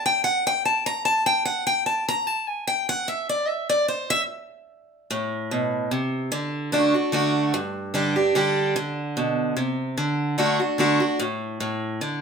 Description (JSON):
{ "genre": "bluegrass", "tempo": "148 BPM", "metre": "3/4", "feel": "swing 54% on 8ths", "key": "unclear", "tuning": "A4 = 440 Hz", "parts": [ { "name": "picked steel-string acoustic guitar", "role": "solo", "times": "0.0-12.2 s", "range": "G2 to Bb5", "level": "-21 LUFS", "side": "equal", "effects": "none" } ], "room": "wet studio reverb, RT60 0.8 s", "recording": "minimal, uncompressed stereo recording", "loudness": "-21 LUFS", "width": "side -6 dB against mid", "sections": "0.0-5.1 A section; 5.1-12.2 B section", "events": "steel-string acoustic guitar solo 0.0-5.1", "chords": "0.0 N.C.; 5.1 Am; 6.3 D; 7.5 G5; 10.0 D" }